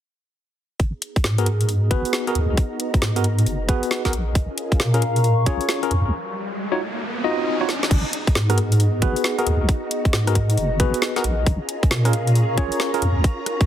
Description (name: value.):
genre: UK garage, two-step garage.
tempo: 135 BPM.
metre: 4/4.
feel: swing 64% on 16ths.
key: G# dorian.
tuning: A4 = 441 Hz.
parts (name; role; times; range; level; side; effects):
soft string machine; sustained chords; 0.8-13.7 s; B3 to A#5; -33 LUFS; equal; ensemble chorus, sidechain pumping.
deep soft wobble bass; bass; 0.8-13.2 s; F#1 to A#2; -20 LUFS; equal; chorus.
electronic kick drum; drums; 0.8-13.7 s; none; -19 LUFS; equal; none.
garage drum kit; drums; 0.8-13.7 s; crash cymbal, hi-hat, rim click, snare drum; -25 LUFS; equal; none.
warbly tape-like pad; texture; 0.8-13.7 s; D#4 to C#6; -29 LUFS; left 1 dB; chorus, built-in reverb, sidechain pumping.
tine electric piano; stabs; 1.4-13.0 s; B3 to D#5; -25 LUFS; equal; medium stereo tremolo, low-pass filter, ping-pong delay.
riser; sound effects; 5.8-7.9 s; none; -29 LUFS; right 1 dB; none.
room: light reverb, digital ambience.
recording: heavily compressed radio sound, multiband compression.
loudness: -18 LUFS.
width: side -11 dB against mid.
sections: 0.8-7.9 A section; 7.9-13.7 B section.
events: filter sweep on wobble bass 0.8-7.9; riser 5.8-7.9; break 6.1-7.9; drum fill 7.7.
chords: 0.8 G#m9; 4.1 A#m7; 6.1 D#madd9; 7.9 G#m9; 11.2 A#m7.